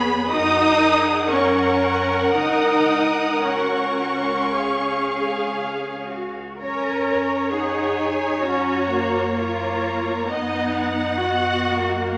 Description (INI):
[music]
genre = classical, slow romantic movement for string orchestra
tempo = 54-67 BPM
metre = 4/4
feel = rubato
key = F# major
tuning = A4 = 439 Hz
[part]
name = warm symphonic violin section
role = melody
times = 0.0-12.2 s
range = D#5 to D#6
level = -29 LUFS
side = equal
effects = none
[part]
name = clear symphonic violin section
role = second line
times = 0.0-12.2 s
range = Ab4 to F#5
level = -27 LUFS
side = equal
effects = none
[part]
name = rich chamber viola section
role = accompaniment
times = 0.0-12.2 s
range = A#3 to D#4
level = -25 LUFS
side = equal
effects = none
[part]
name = rich symphonic double bass section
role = bass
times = 0.0-12.2 s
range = C#2 to F#2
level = -37 LUFS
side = equal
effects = none
[part]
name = warm symphonic cello section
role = bass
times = 0.0-12.2 s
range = D#4 to A#4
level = -30 LUFS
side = equal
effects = none
[sound]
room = wet recital hall reverb, RT60 1.4 s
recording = none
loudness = -21 LUFS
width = mono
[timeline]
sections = 0.0-6.6 A section; 6.6-12.2 B section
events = none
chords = 0.3 F#; 2.4 F#/C#; 4.5 C#; 6.6 F#; 10.3 Bmaj7/F#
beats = 0.32 1.31 | 2.36 3.44 4.53 5.58 | 6.59 7.51 8.44 9.38 | 10.29 11.20